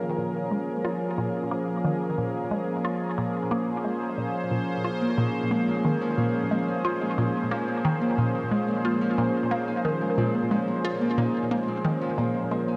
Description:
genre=ambient, sequencer-driven space music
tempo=90 BPM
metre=4/4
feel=straight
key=Bb minor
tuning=A4 = 444 Hz
part: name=sweeping resonant pad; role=sustained chords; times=0.0-12.8 s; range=F3 to C5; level=-30 LUFS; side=equal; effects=chorus
part: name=hollow square pluck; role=riff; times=0.2-12.6 s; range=Bb2 to F4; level=-31 LUFS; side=equal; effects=chorus, phaser, tape echo
part: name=Celtic harp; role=arpeggios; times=5.0-12.8 s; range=Bb2 to Eb4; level=-30 LUFS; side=equal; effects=tape echo
room=wet lush hall reverb, RT60 2.6 s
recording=dreamy mix soaked in reverb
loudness=-26 LUFS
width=mono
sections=0.0-12.8 A section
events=none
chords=0.0 Bbm7

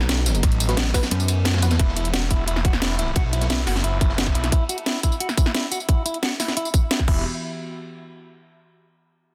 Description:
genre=dark technical drum and bass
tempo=176 BPM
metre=4/4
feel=straight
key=unclear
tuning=A4 = 440 Hz
part: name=sweeping resonant pad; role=sustained chords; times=0.0-1.8, 7.1-7.2 s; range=E3 to G4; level=-37 LUFS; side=equal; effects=chorus, sidechain pumping
part: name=pulsing pluck wobble bass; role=bass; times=0.0-1.8 s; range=B1 to F#2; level=-22 LUFS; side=equal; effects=chorus
part: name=drum and bass drum kit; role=drums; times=0.0-7.1 s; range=crash cymbal, hi-hat, snare drum, tambourine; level=-27 LUFS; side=equal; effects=overdrive
part: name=crunchy breakbeat drum kit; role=drums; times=0.1-4.4 s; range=ride cymbal, snare drum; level=-35 LUFS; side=equal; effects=high-pass filter on cymbals, high-pass filter on snare, high-pass filter on room
part: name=snarling distorted saw bass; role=bass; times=0.4-4.5, 7.1-7.2 s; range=E1 to B1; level=-26 LUFS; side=equal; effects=distortion, tube saturation, sidechain pumping
part: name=electronic kick drum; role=drums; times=0.4-7.1 s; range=none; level=-22 LUFS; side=equal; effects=none
part: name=filtered dub chord stab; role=stabs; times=0.7-1.7 s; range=B3 to B4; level=-35 LUFS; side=equal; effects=phaser, dub echo
part: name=clean electric guitar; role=arpeggios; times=1.8-7.2 s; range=E4 to F#4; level=-32 LUFS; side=equal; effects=spring reverb, sidechain pumping, low-pass filter, dub echo
room=digital ambience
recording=dense, heavily limited modern master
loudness=-22 LUFS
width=mono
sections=0.0-1.8 A section; 1.8-7.2 B section; 7.2-8.6 C section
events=drop 0.0-1.8; kick drops out 1.1-1.8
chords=0.0 B; 1.8 Esus2; 7.1 Em; 7.2 N.C.

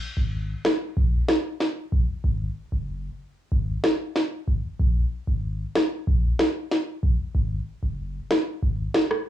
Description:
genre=dancehall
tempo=94 BPM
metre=4/4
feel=straight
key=unclear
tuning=A4 = 441 Hz
part: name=clean 808-style bass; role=bass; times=0.2-8.9 s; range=Gb1 to Bb1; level=-22 LUFS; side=equal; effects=none
part: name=electronic snare drum and rim click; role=drums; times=0.6-9.3 s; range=none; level=-23 LUFS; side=equal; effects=overdrive, cassette tape
room=light reverb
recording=home recording on cassette, studio reverb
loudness=-23 LUFS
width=side -12 dB against mid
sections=0.0-9.3 A section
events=break 0.0-9.3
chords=none

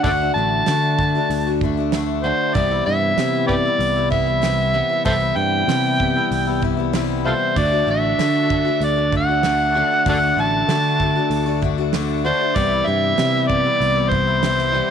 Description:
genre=folk rock and heartland rock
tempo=96 BPM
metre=4/4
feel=straight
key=D mixolydian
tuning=A4 = 439 Hz
part: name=overdriven harmonica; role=melody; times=0.0-14.9 s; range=F4 to A5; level=-19 LUFS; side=right 1 dB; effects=none
part: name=picked swing-style acoustic guitar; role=accompaniment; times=0.0-14.9 s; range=C3 to F#4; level=-26 LUFS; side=left 11 dB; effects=none
part: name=twelve-string electric guitar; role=riff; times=0.0-14.9 s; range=C3 to F#4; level=-24 LUFS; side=equal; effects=none
part: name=picked electric bass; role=bass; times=0.0-14.8 s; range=A1 to D3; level=-23 LUFS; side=equal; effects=none
part: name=damped 70s drum kit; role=drums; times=0.0-14.7 s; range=hi-hat, kick drum, snare drum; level=-25 LUFS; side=right 4 dB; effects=none
part: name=bright tonewheel organ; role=sustained chords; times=7.6-14.9 s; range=D4 to D5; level=-34 LUFS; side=equal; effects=slow rotary speaker, chorus vibrato
room=light reverb, small room ambience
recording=1960s-style stereo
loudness=-16 LUFS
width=side -8 dB against mid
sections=0.0-14.9 A section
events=none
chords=0.0 D; 2.6 Cmaj7; 7.6 D; 12.6 Cmaj7

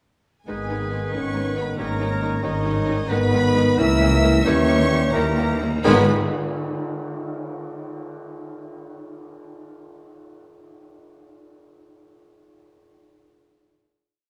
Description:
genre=classical, dramatic, fast romantic movement for symphony orchestra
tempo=89 BPM (dotted quarters)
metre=6/8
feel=uneven beats, rubato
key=G# minor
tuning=A4 = 436 Hz
part: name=rich studio violin section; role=melody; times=0.5-6.1 s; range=D#5 to E6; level=-33 LUFS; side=equal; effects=none
part: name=clear clarinet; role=second line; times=0.5-6.0 s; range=D#4 to E5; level=-33 LUFS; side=equal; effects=none
part: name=clear cor anglais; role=second line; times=0.5-6.0 s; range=G4 to C#5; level=-34 LUFS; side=equal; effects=none
part: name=mellow flute section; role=second line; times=0.5-6.1 s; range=D#4 to E5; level=-33 LUFS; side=equal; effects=none
part: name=warm symphonic violin section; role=second line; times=0.5-6.1 s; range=A#3 to E4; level=-34 LUFS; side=equal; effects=none
part: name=mellow bassoon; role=accompaniment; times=0.5-6.0 s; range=D#3 to E3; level=-31 LUFS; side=equal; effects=none
part: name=warm studio viola section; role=accompaniment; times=0.5-6.1 s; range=D#3 to A#3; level=-32 LUFS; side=equal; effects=none
part: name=mellow French horn section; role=sustained chords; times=0.5-6.0 s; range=D#3 to E4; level=-28 LUFS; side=equal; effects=none
part: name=warm trombone section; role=sustained chords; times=0.5-6.0 s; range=D#3 to C#4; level=-30 LUFS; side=equal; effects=none
part: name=clear symphonic double bass section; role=bass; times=0.5-6.1 s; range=G#1 to D#2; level=-28 LUFS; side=equal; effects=none
part: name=rich symphonic cello section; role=bass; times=0.5-6.1 s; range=C#2 to G#2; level=-28 LUFS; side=equal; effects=none
part: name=cymbal swell and tam-tam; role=percussion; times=3.1-7.7 s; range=none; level=-34 LUFS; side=equal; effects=none
room=wet scoring stage reverb, RT60 2.0 s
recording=none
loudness=-21 LUFS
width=mono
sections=0.5-5.9 A section; 5.9-7.2 final chord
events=band accent 5.9-6.3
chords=0.5 G#m; 1.8 D#7/G#; 3.1 G#m; 3.8 A#dim/C#; 4.5 D#7b9; 5.9 G#m

